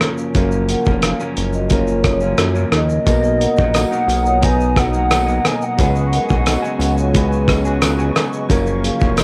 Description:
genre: indie pop, bedroom pop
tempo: 88 BPM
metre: 4/4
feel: straight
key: F# major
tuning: A4 = 440 Hz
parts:
  - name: electric guitar at the edge of break-up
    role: accompaniment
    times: 0.0-9.2 s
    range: F#2 to G#4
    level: -26 LUFS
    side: equal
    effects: subtle chorus, warbly pitch drift
  - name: soft electric-piano-like synth keys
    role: accompaniment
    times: 0.0-9.2 s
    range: F#3 to A#5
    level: -27 LUFS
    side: equal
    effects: chorus, cassette tape
  - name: cloth-damped thuddy drum kit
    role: drums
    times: 0.0-9.2 s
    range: hi-hat, kick drum, rim click, shaker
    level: -20 LUFS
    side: equal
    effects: cassette tape
  - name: fat analog bass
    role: bass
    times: 0.3-9.2 s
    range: E#1 to F#2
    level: -21 LUFS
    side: equal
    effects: none
  - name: vibraphone with soft mallets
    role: second line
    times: 0.7-9.2 s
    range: D#4 to F#5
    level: -28 LUFS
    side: equal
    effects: subtle chorus, analog delay
  - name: warbly nostalgic lead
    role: melody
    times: 2.8-7.8 s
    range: D#5 to G#5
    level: -22 LUFS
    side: equal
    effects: lush chorus, cassette tape, analog delay
  - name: hollow soft pad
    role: sustained chords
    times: 3.1-9.2 s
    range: A#4 to D#6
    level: -32 LUFS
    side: equal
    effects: ensemble chorus
  - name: tambourine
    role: percussion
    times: 3.1-9.2 s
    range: none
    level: -42 LUFS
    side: equal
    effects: none
room: light reverb, small room ambience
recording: home recording on cassette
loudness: -16 LUFS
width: mono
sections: 0.0-9.2 A section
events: none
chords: 0.0 F#maj7; 3.1 Bmaj7; 5.8 C#7sus4; 8.5 F#maj7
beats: | 0.35 1.03 1.71 2.38 | 3.06 3.74 4.42 5.10 | 5.78 6.46 7.14 7.82 | 8.50 9.18

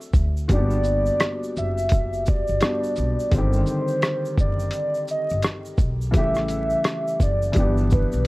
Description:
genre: lo-fi hip hop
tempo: 85 BPM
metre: 4/4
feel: swing 62% on 16ths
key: G major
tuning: A4 = 441 Hz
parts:
  - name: felt-muted upright piano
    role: accompaniment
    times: 0.0-8.3 s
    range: C#3 to A4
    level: -27 LUFS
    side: left 1 dB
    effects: cassette tape
  - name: egg shaker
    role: percussion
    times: 0.0-8.2 s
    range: none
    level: -47 LUFS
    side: right 3 dB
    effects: none
  - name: upright bass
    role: bass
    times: 0.1-8.2 s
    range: F#1 to D2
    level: -24 LUFS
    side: equal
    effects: none
  - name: lo-fi sampler-style drum kit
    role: drums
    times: 0.1-8.3 s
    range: hi-hat, kick drum, rim click, shaker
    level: -21 LUFS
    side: equal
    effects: overdrive
  - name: warbly nostalgic lead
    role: melody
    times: 0.5-8.3 s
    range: B4 to E5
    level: -25 LUFS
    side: right 1 dB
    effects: chorus
room: little or no reverb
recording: dry, gritty hardware recording, vinyl crackle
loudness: -20 LUFS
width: side -20 dB against mid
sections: 0.0-8.3 A section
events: none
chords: 0.5 Gmaj7; 3.3 Cmadd9; 6.1 A7; 7.6 G6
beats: | 0.49 1.20 1.91 2.61 | 3.32 4.03 4.73 5.44 | 6.14 6.85 7.55 8.26

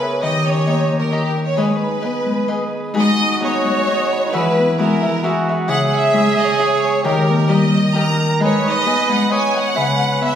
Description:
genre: mexican folk, mariachi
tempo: 132 BPM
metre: 3/4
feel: swing 55% on 8ths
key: G# minor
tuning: A4 = 440 Hz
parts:
  - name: clear studio violin section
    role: melody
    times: 0.0-10.4 s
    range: G4 to A#5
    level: -20 LUFS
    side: equal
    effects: none
  - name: dark trumpet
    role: second line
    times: 0.0-10.4 s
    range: D#4 to C#5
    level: -22 LUFS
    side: right 4 dB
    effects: none
  - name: cavaquinho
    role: accompaniment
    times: 0.0-10.4 s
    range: D#4 to B5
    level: -24 LUFS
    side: left 1 dB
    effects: none
  - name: Celtic harp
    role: arpeggios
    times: 0.0-10.4 s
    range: C#3 to D#6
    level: -18 LUFS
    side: left 2 dB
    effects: none
room: wet recital hall reverb, RT60 1.4 s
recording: recorded in a church or concert hall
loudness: -14 LUFS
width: side -9 dB against mid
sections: 0.0-3.0 A section; 3.0-10.4 A section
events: none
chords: 0.2 D#7; 1.6 G#m; 4.3 Eadd9; 5.7 C#m; 7.0 D#; 8.4 G#m; 9.8 C#m7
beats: | 0.23 0.68 1.14 | 1.59 2.05 2.51 | 2.97 3.43 3.88 | 4.34 4.79 5.24 | 5.69 6.14 6.59 | 7.04 7.50 7.95 | 8.41 8.87 9.32 | 9.77 10.22

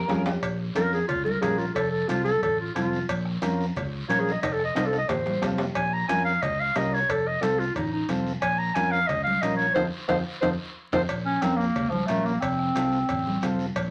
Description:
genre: latin, cumbia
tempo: 180 BPM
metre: 4/4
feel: straight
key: Bb harmonic minor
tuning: A4 = 440 Hz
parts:
  - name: fingered electric bass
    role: bass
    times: 0.0-13.9 s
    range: F1 to F2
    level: -33 LUFS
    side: equal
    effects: none
  - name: combo organ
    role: accompaniment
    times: 0.1-13.7 s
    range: C4 to Bb4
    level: -34 LUFS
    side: equal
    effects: none
  - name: bombo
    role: percussion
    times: 0.1-13.9 s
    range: none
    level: -46 LUFS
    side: equal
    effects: none
  - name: congas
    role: percussion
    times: 0.1-13.9 s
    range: none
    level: -36 LUFS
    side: equal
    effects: none
  - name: guiro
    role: percussion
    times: 0.1-13.9 s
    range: none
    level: -45 LUFS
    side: equal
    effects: none
  - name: timbales and cowbell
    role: percussion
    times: 0.1-13.9 s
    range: none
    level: -35 LUFS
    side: equal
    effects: none
  - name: warm clarinet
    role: melody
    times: 0.8-13.5 s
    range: F3 to Bb5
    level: -28 LUFS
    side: equal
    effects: none
room: moderate studio reverb, RT60 0.7 s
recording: vinyl crackle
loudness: -26 LUFS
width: mono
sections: 0.4-11.1 A section; 11.1-13.9 B section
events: drum fill 0.0-0.4, 4.4-5.8, 10.3-11.1; clarinet solo 0.4-11.1; band accent 9.8-11.1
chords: 0.4 Bbm; 1.8 F; 3.1 Bbm; 4.4 F; 5.8 Bbm; 7.1 F; 8.4 Bbm; 9.8 F7; 11.1 Bbm; 12.4 F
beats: 0.10 | 0.43 0.76 1.09 1.43 | 1.76 2.10 2.43 2.76 | 3.10 3.43 3.76 4.10 | 4.43 4.76 5.10 5.43 | 5.76 6.10 6.43 6.76 | 7.10 7.43 7.76 8.10 | 8.43 8.76 9.10 9.43 | 9.76 10.10 10.43 10.76 | 11.10 11.43 11.76 12.10 | 12.43 12.76 13.10 13.43 | 13.76

